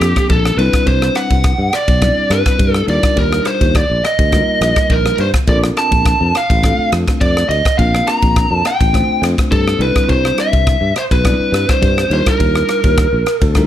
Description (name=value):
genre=electric jazz fusion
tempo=104 BPM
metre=4/4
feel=straight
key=Bb major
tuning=A4 = 440 Hz
part: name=biting lead guitar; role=melody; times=0.0-13.7 s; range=G4 to Bb5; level=-16 LUFS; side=equal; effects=overdrive, slapback echo
part: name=bell-like tine electric piano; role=accompaniment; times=0.0-13.7 s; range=F3 to D5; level=-21 LUFS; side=left 1 dB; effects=wide subtle chorus
part: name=sustaining fretless electric bass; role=bass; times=0.0-13.6 s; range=A1 to G2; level=-17 LUFS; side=equal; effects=none
part: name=crisp fusion drum kit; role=drums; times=0.0-13.7 s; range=kick drum, ride cymbal, rim click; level=-16 LUFS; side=equal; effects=none
room=studio reverb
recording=none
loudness=-11 LUFS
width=side -11 dB against mid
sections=0.0-13.7 A section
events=none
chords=0.0 Bbmaj9; 0.6 Cmaj9; 2.9 Ebmaj9; 5.5 Bbmaj9; 9.8 Cmaj9; 12.1 Ebmaj9